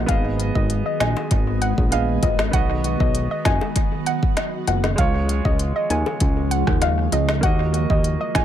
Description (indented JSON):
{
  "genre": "dancehall",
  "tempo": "98 BPM",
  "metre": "4/4",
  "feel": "straight",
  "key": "unclear",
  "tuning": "A4 = 440 Hz",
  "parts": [
    { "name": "clear grand piano", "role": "accompaniment", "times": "0.0-8.4 s", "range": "Ab3 to Eb5", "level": "-29 LUFS", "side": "right 4 dB", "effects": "analog delay" },
    { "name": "ethereal airy pad", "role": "sustained chords", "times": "0.0-8.4 s", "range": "Db3 to Ab4", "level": "-28 LUFS", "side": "equal", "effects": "ensemble chorus, built-in reverb, phaser, sidechain pumping" },
    { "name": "fat analog bass", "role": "bass", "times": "0.0-8.4 s", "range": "F#1 to Eb2", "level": "-22 LUFS", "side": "equal", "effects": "none" },
    { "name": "soft round pluck", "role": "melody", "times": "0.1-8.4 s", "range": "Eb5 to Ab5", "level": "-26 LUFS", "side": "equal", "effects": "chorus, analog delay" },
    { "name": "organic electronic drum kit", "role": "drums", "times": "0.1-8.4 s", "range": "hi-hat, kick drum, rim click, snare drum", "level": "-22 LUFS", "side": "equal", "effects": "analog delay" },
    { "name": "bongos", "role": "percussion", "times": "1.0-8.4 s", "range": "none", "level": "-32 LUFS", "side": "left 5 dB", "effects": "analog delay" }
  ],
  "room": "digital ambience",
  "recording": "echo-heavy mix",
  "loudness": "-18 LUFS",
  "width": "side -10 dB against mid",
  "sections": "0.0-8.4 A section",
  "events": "none",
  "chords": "0.1 Abm; 2.5 B; 5.0 Db; 7.4 Ebm"
}